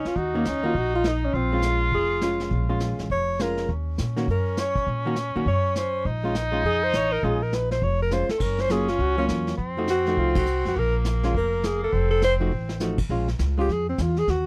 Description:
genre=jazz, small-group swing and bop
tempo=204 BPM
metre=4/4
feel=swing 62% on 8ths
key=Bb minor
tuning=A4 = 441 Hz
part: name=breathy alto saxophone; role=melody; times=0.0-14.5 s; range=Bb3 to Db5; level=-27 LUFS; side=equal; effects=none
part: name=warm tenor saxophone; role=second line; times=0.0-13.0 s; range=Bb3 to F4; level=-32 LUFS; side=equal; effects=none
part: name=vintage brush drum kit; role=drums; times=0.0-14.5 s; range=brushed snare drum, crash cymbal, hi-hat, kick drum, ride cymbal, snare drum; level=-33 LUFS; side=equal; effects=none
part: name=upright bass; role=bass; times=0.1-14.5 s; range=F1 to Bb2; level=-29 LUFS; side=equal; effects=none
part: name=hollow-body jazz guitar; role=accompaniment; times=0.3-13.7 s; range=Eb3 to Gb4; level=-30 LUFS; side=equal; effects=none
room=little or no reverb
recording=dry, close 1970s-style studio recording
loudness=-24 LUFS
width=mono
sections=0.0-13.1 A section; 13.1-14.5 B section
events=drum fill 8.1, 12.5; band accent 10.3; alto saxophone solo 13.1-14.5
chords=0.2 Ebm7; 1.3 Bbm7; 3.7 Ebm7; 6.1 Bbm7; 8.4 Gbmaj7; 9.6 F7b9; 10.8 Bb5; 11.9 F7b9; 13.1 Bbm7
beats=| 0.16 0.46 0.75 1.05 | 1.34 1.63 1.93 2.22 | 2.52 2.81 3.10 3.40 | 3.69 3.99 4.28 4.58 | 4.87 5.17 5.46 5.76 | 6.05 6.34 6.64 6.93 | 7.23 7.52 7.82 8.11 | 8.41 8.70 9.00 9.29 | 9.59 9.88 10.17 10.47 | 10.76 11.05 11.35 11.64 | 11.94 12.23 12.52 12.81 | 13.11 13.40 13.69 13.99 | 14.28

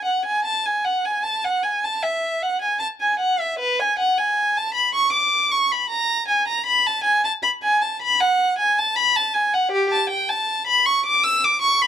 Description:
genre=classical, baroque-style suite movement for unaccompanied violin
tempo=78 BPM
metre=4/4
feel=rubato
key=unclear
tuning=A4 = 440 Hz
part: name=rich violin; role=solo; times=0.0-11.9 s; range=G4 to E6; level=-18 LUFS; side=equal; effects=none
room=light reverb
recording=dark, warm production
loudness=-18 LUFS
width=side -10 dB against mid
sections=0.0-11.9 A section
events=none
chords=none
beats=| 0.45 1.24 2.03 2.80 | 3.58 4.36 5.12 5.89 | 6.66 7.43 8.20 8.96 | 9.72 10.47 11.23

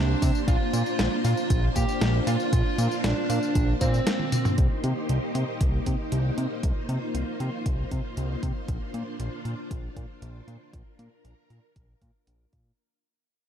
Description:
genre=synthwave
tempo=117 BPM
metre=4/4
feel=straight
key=unclear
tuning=A4 = 441 Hz
part: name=fuzz lead guitar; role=melody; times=0.0-4.5 s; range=C4 to G4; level=-30 LUFS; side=right 5 dB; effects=distortion, digital delay
part: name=soft synth bell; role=second line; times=0.0-4.5 s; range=C5 to G5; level=-36 LUFS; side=right 1 dB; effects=chorus, digital delay
part: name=string machine, full ensemble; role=sustained chords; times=0.0-12.8 s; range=Bb3 to C5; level=-31 LUFS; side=left 1 dB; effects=ensemble chorus, sidechain pumping
part: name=fat analog bass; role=bass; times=0.0-12.7 s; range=Bb1 to C3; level=-26 LUFS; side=equal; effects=none
part: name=detuned 8-bit digital drum machine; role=drums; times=0.2-12.6 s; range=hi-hat, snare drum, tambourine, toms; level=-30 LUFS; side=equal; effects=none
part: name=electronic kick drum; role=drums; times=0.2-12.6 s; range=none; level=-26 LUFS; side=equal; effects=none
room=light reverb, digital ambience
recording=dark, warm production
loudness=-23 LUFS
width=side -9 dB against mid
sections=0.0-4.6 A section; 4.6-12.8 B section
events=drum fill 4.2-4.6; fade-out 4.6-12.8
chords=0.5 Bbadd9; 4.6 Cm7; 8.7 Bbadd9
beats=| 0.48 0.99 1.50 2.02 | 2.53 3.04 3.55 4.07 | 4.58 5.09 5.61 6.12 | 6.63 7.14 7.66 8.17 | 8.68 9.20 9.71 10.22 | 10.73 11.25 11.76 12.27

